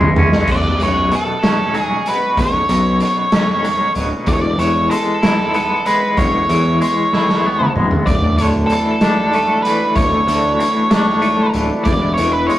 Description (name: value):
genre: psychedelic rock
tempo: 63 BPM (dotted quarters)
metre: 6/8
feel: straight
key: B dorian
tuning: A4 = 440 Hz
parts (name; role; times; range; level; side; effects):
- tonewheel organ; sustained chords; 0.0-0.5, 8.1-12.6 s; C#3 to G#5; -28 LUFS; right 2 dB; none
- twangy electric guitar; riff; 0.0-12.6 s; B1 to E4; -18 LUFS; left 1 dB; tremolo
- fuzz picked electric bass; bass; 0.0-12.5 s; B0 to E2; -20 LUFS; equal; overdrive
- raw garage drum kit; drums; 0.0-12.6 s; crash cymbal, hi-hat, kick drum, snare drum, toms; -18 LUFS; equal; none
- octave-fuzz lead guitar; melody; 0.5-12.6 s; A4 to D5; -18 LUFS; right 1 dB; distortion
room: moderate small room reverb, RT60 0.5 s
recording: rough rehearsal-room recording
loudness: -13 LUFS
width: side -14 dB against mid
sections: 0.5-12.6 A section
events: drum fill 0.0-0.5, 7.1-8.1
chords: 0.5 Bsus2; 4.3 E; 8.1 Dadd9; 11.9 E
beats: | 0.48 1.43 | 2.38 3.32 | 4.27 5.22 | 6.17 7.12 | 8.07 9.02 | 9.96 10.91 | 11.86